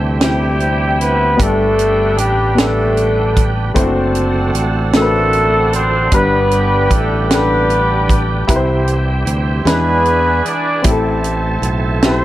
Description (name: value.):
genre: slow gospel.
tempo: 51 BPM (dotted quarters).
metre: 6/8.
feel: straight.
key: unclear.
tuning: A4 = 438 Hz.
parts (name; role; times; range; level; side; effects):
warm baby grand piano; accompaniment; 0.0-12.2 s; G2 to C6; -20 LUFS; left 3 dB; none.
bright tonewheel organ; sustained chords; 0.0-12.2 s; D3 to A4; -25 LUFS; right 3 dB; fast rotary speaker, overdrive, chorus vibrato.
hand-pumped harmonium; sustained chords; 0.0-12.2 s; C4 to A5; -25 LUFS; right 2 dB; none.
modern bright fingered electric bass; bass; 0.0-12.2 s; F#1 to E2; -18 LUFS; equal; none.
mellow horn section; melody; 0.2-12.2 s; G3 to D5; -16 LUFS; equal; none.
tight funk drum kit; drums; 0.2-12.2 s; hi-hat, kick drum, snare drum; -16 LUFS; right 1 dB; none.
room: light reverb, small room reverb.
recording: none.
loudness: -12 LUFS.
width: side -14 dB against mid.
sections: 0.0-12.2 A section.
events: none.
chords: 0.0 C; 1.4 G; 3.8 D7/F#; 6.1 G; 8.5 C; 9.7 E7; 10.8 Am.